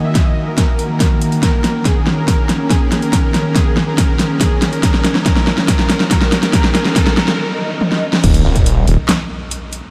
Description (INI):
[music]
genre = heavy wobble dubstep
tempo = 141 BPM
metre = 4/4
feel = half-time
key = Eb minor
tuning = A4 = 440 Hz
[part]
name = soft supersaw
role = melody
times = 0.0-7.4 s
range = Ab4 to Fb5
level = -27 LUFS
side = equal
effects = diffuse ambient delay
[part]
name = evolving wavetable pad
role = sustained chords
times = 0.0-8.2 s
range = Eb3 to Gb4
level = -23 LUFS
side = equal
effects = chorus, built-in reverb, sidechain pumping
[part]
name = dubstep drum kit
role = drums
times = 0.2-9.8 s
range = crash cymbal, handclaps, hi-hat, snare drum, toms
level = -18 LUFS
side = equal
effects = none
[part]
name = electronic kick drum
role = drums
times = 0.2-8.6 s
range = none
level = -18 LUFS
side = equal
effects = none
[part]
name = riser, swell and impact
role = sound effects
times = 3.7-9.9 s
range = none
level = -28 LUFS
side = equal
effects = none
[part]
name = wobble bass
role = bass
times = 8.2-9.0 s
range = Eb1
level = -14 LUFS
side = equal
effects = chorus, overdrive
[part]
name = snarling distorted saw bass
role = bass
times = 8.4-8.9 s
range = Eb1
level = -17 LUFS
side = equal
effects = overdrive
[sound]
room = moderate huge ambient reverb, RT60 7.1 s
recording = dreamy mix soaked in reverb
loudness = -14 LUFS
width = mono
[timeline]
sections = 0.0-8.2 A section; 8.2-9.9 B section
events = build-up 0.0-8.2; drum fill 0.0-7.4, 7.8-8.2; break 7.4-8.2; swell 7.4-8.2; drop 8.2-9.9; impact 8.2-9.9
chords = 0.0 Ebm; 8.2 N.C.